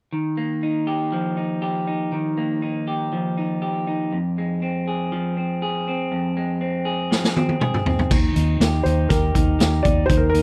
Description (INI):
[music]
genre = jangly indie pop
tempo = 120 BPM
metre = 4/4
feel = straight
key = Eb major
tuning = A4 = 440 Hz
[part]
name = electric guitar through a small old amp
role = arpeggios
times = 0.1-10.4 s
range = F2 to Ab4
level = -25 LUFS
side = equal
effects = tape echo
[part]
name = raw garage drum kit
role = drums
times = 7.1-10.4 s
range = crash cymbal, hi-hat, kick drum, snare drum, toms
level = -22 LUFS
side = equal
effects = none
[part]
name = vintage muted fingered electric bass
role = bass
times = 8.1-10.4 s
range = Eb2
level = -23 LUFS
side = equal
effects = none
[part]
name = warm upright piano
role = melody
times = 8.8-10.4 s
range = Bb4 to D5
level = -25 LUFS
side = equal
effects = none
[sound]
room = little or no reverb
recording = dry, close 1970s-style studio recording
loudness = -22 LUFS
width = mono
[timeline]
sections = 0.1-8.1 A section; 8.1-10.4 B section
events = drum fill 7.1-8.1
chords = 0.1 Ebadd9; 4.1 Fm; 8.1 Ebadd9